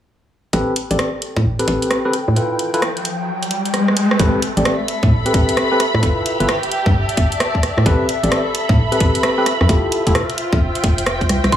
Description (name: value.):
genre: UK garage, two-step garage.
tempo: 131 BPM.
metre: 4/4.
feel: swing 64% on 16ths.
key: A minor.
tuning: A4 = 440 Hz.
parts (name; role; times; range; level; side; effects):
soft string machine; sustained chords; 0.5-11.6 s; E5 to G5; -27 LUFS; equal; phaser, ensemble chorus, sidechain pumping.
tine electric piano; stabs; 0.5-11.6 s; C4 to D5; -20 LUFS; left 1 dB; low-pass filter, dub echo.
organ-like FM bass; bass; 0.5-11.6 s; F1 to A2; -18 LUFS; equal; sidechain pumping.
electronic kick drum; drums; 0.5-11.6 s; none; -17 LUFS; equal; overdrive, high-pass filter on kick.
garage drum kit; drums; 0.5-11.6 s; hi-hat, rim click; -22 LUFS; right 1 dB; overdrive.
riser; sound effects; 2.4-4.2 s; none; -22 LUFS; left 1 dB; none.
dark symphonic string section; texture; 4.2-11.6 s; F4 to B5; -23 LUFS; equal; sidechain pumping.
soft synth bell; melody; 11.5-11.6 s; C6; -14 LUFS; right 3 dB; chorus.
room: light reverb, digital ambience.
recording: small room reverb.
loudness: -15 LUFS.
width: side -10 dB against mid.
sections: 0.5-4.2 A section; 4.2-11.6 B section.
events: filter sweep on FM bass 0.5-4.2; filter sweep on tine electric piano 0.5-4.2, 4.2-11.6; filter sweep on string machine 0.5-4.2; riser 2.4-4.2; drum fill 3.7-4.2.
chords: 0.5 Am9; 2.4 G13; 4.0 N.C.; 4.2 Am9; 6.0 G13; 7.6 Am9; 9.5 Fmaj9.